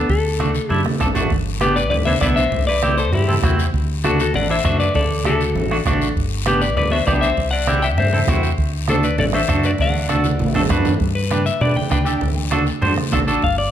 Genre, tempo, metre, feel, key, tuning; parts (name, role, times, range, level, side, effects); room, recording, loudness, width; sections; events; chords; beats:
latin, cumbia; 198 BPM; 4/4; straight; G major; A4 = 439 Hz
clean electric guitar; melody; 0.0-13.7 s; E4 to G5; -22 LUFS; left 4 dB; spring reverb, tape echo
clean electric guitar; accompaniment; 0.0-13.4 s; A3 to C5; -22 LUFS; right 2 dB
deep dub fingered electric bass; bass; 0.0-13.7 s; G1 to B2; -22 LUFS; equal
bombo; percussion; 0.1-13.6 s; -24 LUFS; right 2 dB
guiro; percussion; 0.1-13.7 s; -32 LUFS; left 9 dB
congas; percussion; 0.4-13.3 s; -23 LUFS; right 2 dB
moderate large studio reverb, RT60 1.1 s; -16 LUFS; side -10 dB against mid
0.0-1.3 A section; 1.3-11.0 B section; 11.0-13.7 C section
drum fill 0.7-1.3, 10.3-11.0; clean electric guitar solo 11.0-13.7
0.1 D; 1.3 G; 2.5 C; 3.7 D; 6.2 G; 7.4 C; 8.6 D; 11.0 G; 12.2 D
| 0.09 0.40 0.70 1.00 | 1.31 1.61 1.92 2.22 | 2.52 2.83 3.13 3.43 | 3.74 4.04 4.34 4.65 | 4.95 5.25 5.56 5.86 | 6.16 6.47 6.77 7.07 | 7.38 7.68 7.98 8.28 | 8.59 8.89 9.19 9.49 | 9.80 10.10 10.40 10.71 | 11.01 11.31 11.62 11.92 | 12.22 12.52 12.83 13.13 | 13.43